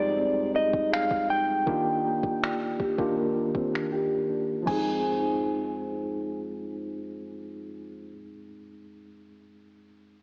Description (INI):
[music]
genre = contemporary R&B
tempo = 80 BPM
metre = 4/4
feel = straight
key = F dorian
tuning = A4 = 440 Hz
[part]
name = direct-recorded clean electric guitar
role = melody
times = 0.0-8.1 s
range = D5 to Ab5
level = -30 LUFS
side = equal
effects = low-pass filter, cassette tape
[part]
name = tine electric piano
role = accompaniment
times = 0.0-10.2 s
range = F2 to Ab4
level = -33 LUFS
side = equal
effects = low-pass filter
[part]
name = nylon-string guitar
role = arpeggios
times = 0.0-8.3 s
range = Eb3 to Ab4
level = -35 LUFS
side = equal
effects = low-pass filter, tape echo
[part]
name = smooth R&B drum kit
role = drums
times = 0.7-4.8 s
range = crash cymbal, finger snaps, kick drum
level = -36 LUFS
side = equal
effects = overdrive, cassette tape
[sound]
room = moderate lush hall reverb, RT60 2.8 s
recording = home recording on cassette, AM radio sound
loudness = -28 LUFS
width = mono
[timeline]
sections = 0.0-4.7 A section; 4.7-7.7 B section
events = filter sweep 0.0-4.7; silent gap 3.9-4.7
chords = 0.0 Fm7; 1.7 Ebmaj7; 4.7 Fm7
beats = 0.17 0.92 | 1.67 2.42 3.17 3.92 | 4.67 5.42 6.17 6.92